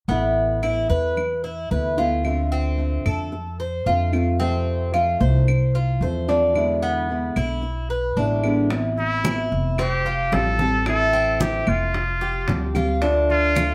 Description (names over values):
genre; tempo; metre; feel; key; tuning
latin, Cuban son and guajira; 111 BPM; 4/4; straight; A harmonic minor, A minor from 8.7 s; A4 = 436 Hz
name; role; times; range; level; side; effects
nylon-string guitar; accompaniment; 0.1-13.7 s; B2 to G4; -27 LUFS; equal; none
Cuban tres; arpeggios; 0.1-13.7 s; B3 to C5; -27 LUFS; equal; none
upright bass; bass; 0.1-13.7 s; F1 to F2; -26 LUFS; equal; none
claves; percussion; 0.6-13.7 s; none; -36 LUFS; equal; none
bongos; percussion; 8.7-13.7 s; none; -35 LUFS; equal; none
congas; percussion; 8.7-13.7 s; none; -32 LUFS; equal; none
trumpet with straight mute; melody; 9.0-13.7 s; E4 to A4; -26 LUFS; equal; none
room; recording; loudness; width
moderate studio reverb, RT60 0.7 s; band playing live in one room; -22 LUFS; mono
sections
0.1-8.7 A section; 8.7-13.7 B section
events
none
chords
0.1 Asus2; 2.2 Dm7; 4.4 F; 6.6 E7; 8.7 Amadd9; 9.8 Fadd9; 10.9 Am; 11.9 Fsus2; 13.0 Dm